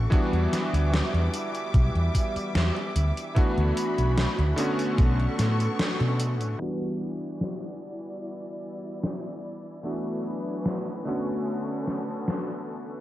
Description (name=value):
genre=vaporwave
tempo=74 BPM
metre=4/4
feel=straight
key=E dorian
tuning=A4 = 441 Hz
part: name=bright electric grand piano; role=accompaniment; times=0.0-13.0 s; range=D3 to F#4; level=-30 LUFS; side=equal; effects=analog chorus, analog delay
part: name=rich studio string section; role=sustained chords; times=0.0-13.0 s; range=D3 to D6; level=-34 LUFS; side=equal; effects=vintage 12-bit sampler grit, low-pass filter
part: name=mellow fretless electric bass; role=bass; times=0.0-6.5 s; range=B1 to B2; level=-24 LUFS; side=equal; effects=none
part: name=electronic kick drum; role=drums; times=0.1-5.2 s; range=none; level=-22 LUFS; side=equal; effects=overdrive
part: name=gated 80s digital drum machine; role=drums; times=0.1-12.4 s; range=hi-hat, snare drum, tambourine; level=-31 LUFS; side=equal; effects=gated reverb, gated reverb snare
room=light reverb, digital ambience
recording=cassette tape, low-pass filter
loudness=-24 LUFS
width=side -14 dB against mid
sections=0.0-6.6 A section; 6.6-13.0 B section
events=band accent 5.8-6.2; filter sweep on string section 6.6-13.0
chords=0.1 Em7; 3.4 D69; 4.6 Bm9; 6.6 Em7; 9.8 D69; 11.1 Bm9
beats=| 0.12 0.93 1.74 2.55 | 3.36 4.17 4.98 5.79 | 6.60 7.42 8.23 9.04 | 9.85 10.66 11.47 12.28